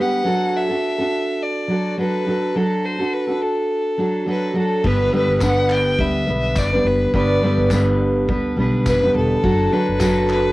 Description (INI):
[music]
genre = acoustic pop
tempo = 104 BPM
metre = 4/4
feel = swing 55% on 16ths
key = G major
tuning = A4 = 440 Hz
[part]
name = bright violin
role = melody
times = 0.0-10.5 s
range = A4 to G5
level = -23 LUFS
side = left 1 dB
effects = cassette tape, plate reverb
[part]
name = fingerpicked steel-string acoustic guitar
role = accompaniment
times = 0.0-10.5 s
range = G2 to B4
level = -18 LUFS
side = right 1 dB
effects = cassette tape
[part]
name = upright bass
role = bass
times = 4.8-10.5 s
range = E1 to D2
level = -23 LUFS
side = equal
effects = none
[part]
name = loose indie drum kit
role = drums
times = 4.8-10.4 s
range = crash cymbal, handclaps, kick drum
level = -27 LUFS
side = left 1 dB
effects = cassette tape
[part]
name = tambourine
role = percussion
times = 5.4-10.2 s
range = none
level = -35 LUFS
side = left 5 dB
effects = none
[sound]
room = moderate booth ambience, RT60 0.2 s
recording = home recording on cassette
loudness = -16 LUFS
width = side -18 dB against mid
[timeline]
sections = 0.0-4.8 A section; 4.8-10.5 B section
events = none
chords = 0.3 D/F#; 4.8 G; 9.4 D